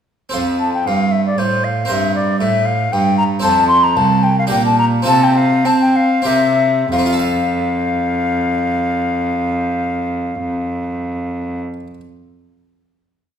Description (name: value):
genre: classical, baroque-style sonata movement with continuo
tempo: 91-117 BPM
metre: 3/4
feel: straight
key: F major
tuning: A4 = 441 Hz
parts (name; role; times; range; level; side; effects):
- bright baroque flute; melody; 0.3-11.6 s; C5 to C6; -17 LUFS; left 3 dB; none
- harpsichord; accompaniment; 0.3-12.0 s; C2 to F5; -21 LUFS; right 3 dB; none
- rich cello; bass; 0.3-11.6 s; C2 to C4; -18 LUFS; right 1 dB; none
room: wet recital hall reverb, RT60 1.3 s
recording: minimal, uncompressed stereo recording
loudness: -14 LUFS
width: side -8 dB against mid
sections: 0.3-6.9 A section; 6.9-10.9 final chord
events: slowing down 2.7-6.9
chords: 0.3 F; 1.9 C5/G; 3.5 F; 4.5 Gm/Bb; 5.1 F/C; 6.3 C7; 6.9 F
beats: | 0.34 0.86 1.39 | 1.91 2.42 2.94 | 3.46 3.98 4.52 | 5.08 5.66 6.27 | 6.92 7.58 8.23 | 8.89 9.55 10.20